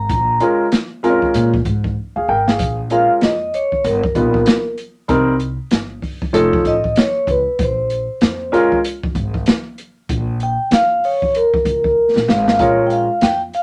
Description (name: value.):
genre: hip hop, jazz-hop.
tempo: 96 BPM.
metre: 4/4.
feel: swing 61% on 16ths.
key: Bb dorian.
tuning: A4 = 440 Hz.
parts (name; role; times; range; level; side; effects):
vibraphone with soft mallets; melody; 0.0-13.6 s; A#4 to Bb5; -19 LUFS; equal; none.
upright bass; bass; 0.0-13.5 s; F1 to Bb2; -25 LUFS; equal; none.
open jazz drum kit; drums; 0.1-13.6 s; hi-hat, kick drum, snare drum; -21 LUFS; equal; none.
warm baby grand piano; accompaniment; 0.4-8.8, 12.6-13.1 s; F3 to G5; -18 LUFS; equal; none.
room: moderate studio ambience, RT60 0.5 s.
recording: none.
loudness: -17 LUFS.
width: mono.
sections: 0.0-2.6 A section; 2.6-12.6 B section; 12.6-13.6 C section.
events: drum fill 2.0-2.6, 12.0-12.6; vibraphone solo 2.6-12.6.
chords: 0.0 Bbm7; 3.8 G7alt; 5.1 Cm7; 6.3 Faug7; 7.6 Bbm7.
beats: | 0.09 0.72 1.34 1.97 | 2.59 3.22 3.84 4.47 | 5.09 5.72 6.34 6.97 | 7.59 8.22 8.84 9.47 | 10.09 10.72 11.34 11.97 | 12.59 13.22.